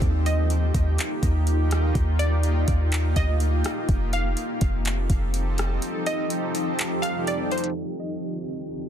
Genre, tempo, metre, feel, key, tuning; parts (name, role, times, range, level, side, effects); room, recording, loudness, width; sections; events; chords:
hip hop, atmospheric cloud-rap; 124 BPM; 4/4; half-time; Eb lydian; A4 = 440 Hz
granular cloud pad; sustained chords; 0.0-8.9 s; Eb2 to A4; -28 LUFS; equal; built-in reverb
soft 808-style bass; bass; 0.0-5.8 s; F1 to Eb2; -22 LUFS; equal
smooth R&B drum kit; drums; 0.0-7.8 s; handclaps, hi-hat, kick drum, rim click; -26 LUFS; equal
glassy wavetable pluck; melody; 0.3-8.7 s; C5 to F5; -32 LUFS; right 1 dB; chorus, tape echo
little or no reverb; dense, heavily limited modern master, low-pass filter; -22 LUFS; side -9 dB against mid
0.0-7.8 A section; 7.8-8.9 B section
kick muted 5.8-7.8; filter sweep 7.8-8.9
0.0 Ebmaj7; 3.9 F7; 7.8 Ebmaj7